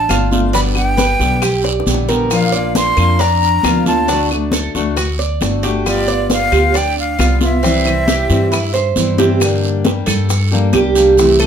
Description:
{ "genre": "latin, Cuban son and guajira", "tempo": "135 BPM", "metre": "4/4", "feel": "straight", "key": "unclear", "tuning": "A4 = 440 Hz", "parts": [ { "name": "breathy jazz flute", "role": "melody", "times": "0.0-8.9 s", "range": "D5 to C6", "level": "-18 LUFS", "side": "equal", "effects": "plate reverb" }, { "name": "Cuban tres", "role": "arpeggios", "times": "0.0-11.5 s", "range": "C4 to D5", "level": "-18 LUFS", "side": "right 4 dB", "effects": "none" }, { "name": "upright bass", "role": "bass", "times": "0.0-11.5 s", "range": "G1 to G2", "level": "-18 LUFS", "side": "equal", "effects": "none" }, { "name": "fingerpicked steel-string acoustic guitar", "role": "accompaniment", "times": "0.1-11.5 s", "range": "B2 to G4", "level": "-19 LUFS", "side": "left 4 dB", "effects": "none" }, { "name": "bongos", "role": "percussion", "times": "0.1-11.5 s", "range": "none", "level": "-26 LUFS", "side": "left 8 dB", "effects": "none" }, { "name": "claves", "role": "percussion", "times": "0.1-11.5 s", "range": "none", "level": "-27 LUFS", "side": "left 6 dB", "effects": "none" }, { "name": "congas", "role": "percussion", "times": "0.1-11.5 s", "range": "none", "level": "-20 LUFS", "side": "right 1 dB", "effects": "none" }, { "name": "guiro", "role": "percussion", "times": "0.1-11.5 s", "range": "none", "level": "-28 LUFS", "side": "right 6 dB", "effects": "none" }, { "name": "maracas", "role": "percussion", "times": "0.1-11.5 s", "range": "none", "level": "-27 LUFS", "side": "right 6 dB", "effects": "none" } ], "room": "moderate studio reverb, RT60 0.6 s", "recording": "none", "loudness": "-12 LUFS", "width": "side -8 dB against mid", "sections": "0.0-9.4 A section; 9.4-11.5 B section", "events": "drum fill 1.6-2.3, 8.7-9.4; Cuban tres solo 9.4-11.5", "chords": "0.0 Dm; 0.5 G; 2.3 Bb; 4.1 D; 5.9 G7; 7.6 C; 9.4 Gm" }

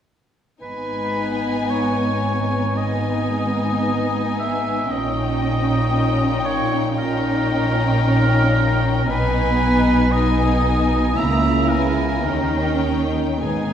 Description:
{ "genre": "classical", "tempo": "56 BPM", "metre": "4/4", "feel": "uneven beats, rubato", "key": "G# minor", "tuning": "A4 = 440 Hz", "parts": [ { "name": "rich studio violin section", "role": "melody", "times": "0.6-13.7 s", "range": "G5 to A#5", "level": "-28 LUFS", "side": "left 4 dB", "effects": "none" }, { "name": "clear oboe", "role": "second line", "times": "0.6-13.7 s", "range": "G#4 to E5", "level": "-24 LUFS", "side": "right 1 dB", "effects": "none" }, { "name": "rich studio violin section", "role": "second line", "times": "0.6-13.7 s", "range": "D#4 to E4", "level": "-26 LUFS", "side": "left 4 dB", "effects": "none" }, { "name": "dark studio viola section", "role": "accompaniment", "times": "0.6-13.7 s", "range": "A#3 to C#4", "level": "-24 LUFS", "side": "right 1 dB", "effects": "none" }, { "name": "clear studio double bass section", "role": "bass", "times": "0.6-13.7 s", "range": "G#1 to D#2", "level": "-24 LUFS", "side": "right 1 dB", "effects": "none" }, { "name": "rich studio cello section", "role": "bass", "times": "0.6-13.7 s", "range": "G#2 to D#3", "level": "-24 LUFS", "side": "right 1 dB", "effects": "none" } ], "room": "wet scoring stage reverb, RT60 1.7 s", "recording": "heard from further back in the room", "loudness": "-17 LUFS", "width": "side -9 dB against mid", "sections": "0.6-13.7 A section", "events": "none", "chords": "0.6 G#m; 4.9 D#7/A#; 9.1 G#m/B; 11.2 A#dim/C#; 12.3 D#7" }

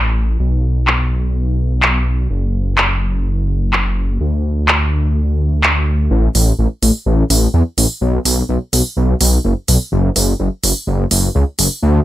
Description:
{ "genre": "EDM, festival progressive house", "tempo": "126 BPM", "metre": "4/4", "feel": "straight", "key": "F# minor", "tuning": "A4 = 443 Hz", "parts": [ { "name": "wide detuned saw bass", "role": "bass", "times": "0.0-12.0 s", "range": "F#1 to E2", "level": "-14 LUFS", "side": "equal", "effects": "chorus" }, { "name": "house drum kit", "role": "drums", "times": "0.9-11.7 s", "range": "handclaps, hi-hat", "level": "-16 LUFS", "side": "equal", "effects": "low-pass filter on snare, studio reverb, low-pass filter on hats" } ], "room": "digital ambience", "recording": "none", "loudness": "-13 LUFS", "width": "side -14 dB against mid", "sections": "0.0-6.1 A section; 6.1-12.0 B section", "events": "build-up 6.1-12.0; filter sweep 6.1-12.0", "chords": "none" }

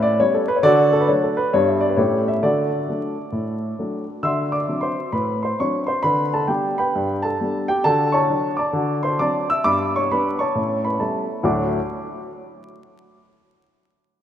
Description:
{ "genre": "jazz, stride piano", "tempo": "133 BPM", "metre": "4/4", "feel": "swing 65% on 8ths", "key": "D major", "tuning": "A4 = 441 Hz", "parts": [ { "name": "dark upright piano", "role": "solo", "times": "0.0-11.8 s", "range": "D2 to E6", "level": "-18 LUFS", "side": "equal", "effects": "none" } ], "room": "wet lush hall reverb, RT60 2.4 s", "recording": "rough home demo mix, vinyl crackle", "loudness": "-18 LUFS", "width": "side -10 dB against mid", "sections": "0.0-4.2 A section; 4.2-11.4 B section; 11.4-13.3 C section", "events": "none", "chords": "0.0 A9; 0.6 D; 1.5 G; 2.0 A9; 2.4 D; 4.2 D7; 6.0 G/D; 7.8 D; 8.7 D7; 9.6 G; 10.5 A9; 11.4 D" }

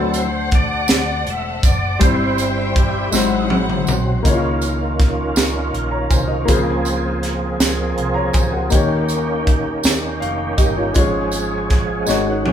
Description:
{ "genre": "slow gospel", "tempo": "54 BPM (dotted quarters)", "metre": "6/8", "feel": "straight", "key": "Db major from 4.2 s", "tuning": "A4 = 442 Hz", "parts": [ { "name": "warm grand piano", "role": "accompaniment", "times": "0.0-12.5 s", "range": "G2 to Bb5", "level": "-22 LUFS", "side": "left 3 dB", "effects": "none" }, { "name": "overdriven tonewheel organ", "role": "sustained chords", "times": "0.0-12.5 s", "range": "Eb3 to E5", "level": "-22 LUFS", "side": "right 2 dB", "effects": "fast rotary speaker, chorus vibrato" }, { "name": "warm studio string section", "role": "sustained chords", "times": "0.0-4.2 s", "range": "G4 to G5", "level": "-26 LUFS", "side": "left 5 dB", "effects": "none" }, { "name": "hollow-body short-scale fingered electric bass", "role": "bass", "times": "0.0-12.5 s", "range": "E1 to Eb2", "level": "-25 LUFS", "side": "equal", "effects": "none" }, { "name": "crisp fusion drum kit", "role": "drums", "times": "0.1-12.5 s", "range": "hi-hat, kick drum, snare drum, toms", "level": "-18 LUFS", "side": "equal", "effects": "none" }, { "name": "tambourine", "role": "percussion", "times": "0.1-12.4 s", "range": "none", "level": "-28 LUFS", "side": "right 5 dB", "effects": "none" } ], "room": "moderate large studio reverb, RT60 0.9 s", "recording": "band playing live in one room", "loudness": "-15 LUFS", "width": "side -9 dB against mid", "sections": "0.0-4.2 A section; 4.2-12.5 B section", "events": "tonewheel organ solo 0.0-4.2; drum fill 3.1-4.2, 12.1-12.5", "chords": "0.0 D7; 2.0 C/G; 3.1 Ab7alt; 4.2 Db69; 6.5 Bbm9; 8.7 Eb7; 11.0 Db/Ab" }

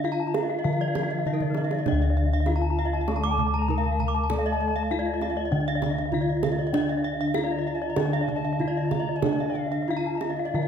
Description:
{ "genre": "Balinese gamelan", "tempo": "99 BPM", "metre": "4/4", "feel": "straight", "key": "D pelog", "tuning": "A4 = 440 Hz", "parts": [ { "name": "gamelan-type bronze metallophone", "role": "melody", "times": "0.0-10.7 s", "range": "D4 to Bb4-20c", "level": "-31 LUFS", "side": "equal", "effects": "none" }, { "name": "breathy mellow tenor recorder", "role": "second line", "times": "0.0-10.7 s", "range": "D5 to Bb5", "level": "-36 LUFS", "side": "left 5 dB", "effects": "none" }, { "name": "gamelan-type bronze metallophone", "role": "accompaniment", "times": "0.0-10.7 s", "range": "D3 to A3-30c", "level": "-35 LUFS", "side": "left 3 dB", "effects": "none" }, { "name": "gamelan-type bronze metallophone", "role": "arpeggios", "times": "0.0-10.6 s", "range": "Bb4-20c to Bb5-20c", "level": "-32 LUFS", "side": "left 8 dB", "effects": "none" }, { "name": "gamelan-type bossed gongs", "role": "bass", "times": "0.0-10.7 s", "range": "D2 to A4-30c", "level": "-27 LUFS", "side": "left 1 dB", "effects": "none" }, { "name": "kendang", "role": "percussion", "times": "0.0-10.5 s", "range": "none", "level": "-32 LUFS", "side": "right 7 dB", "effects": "none" }, { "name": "gamelan-type bronze metallophone", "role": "arpeggios", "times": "0.1-10.7 s", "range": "Bb4-20c to D6", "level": "-32 LUFS", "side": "right 6 dB", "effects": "none" } ], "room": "moderate recital hall reverb, RT60 1.4 s", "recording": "none", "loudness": "-23 LUFS", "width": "side -8 dB against mid", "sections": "0.0-10.7 A section", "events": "drum fill 1.3-1.9", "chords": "none" }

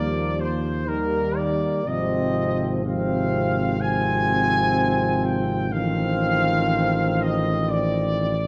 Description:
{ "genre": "classical, hymn-like piece for brass band", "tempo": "61 BPM", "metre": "4/4", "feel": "rubato", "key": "unclear", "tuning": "A4 = 440 Hz", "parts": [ { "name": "warm trumpet section", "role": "melody", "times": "0.0-8.5 s", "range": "Bb4 to Ab5", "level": "-27 LUFS", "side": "equal", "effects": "none" }, { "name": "warm flugelhorn", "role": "second line", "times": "0.0-8.4 s", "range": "Bb3 to C4", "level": "-34 LUFS", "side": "equal", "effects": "none" }, { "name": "warm euphonium", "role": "accompaniment", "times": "0.0-8.4 s", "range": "F3 to G3", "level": "-30 LUFS", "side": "equal", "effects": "none" }, { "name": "warm trombone", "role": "accompaniment", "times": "0.0-8.4 s", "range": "C3 to F3", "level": "-31 LUFS", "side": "equal", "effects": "none" }, { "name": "mellow tuba", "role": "bass", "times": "0.0-8.5 s", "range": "Ab1 to Eb2", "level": "-28 LUFS", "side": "equal", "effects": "none" } ], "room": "moderate scoring stage reverb, RT60 1.5 s", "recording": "none", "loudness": "-22 LUFS", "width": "mono", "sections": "0.0-8.5 A section", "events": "none", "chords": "0.0 Eb; 1.9 Fm/Ab; 5.7 F7/A" }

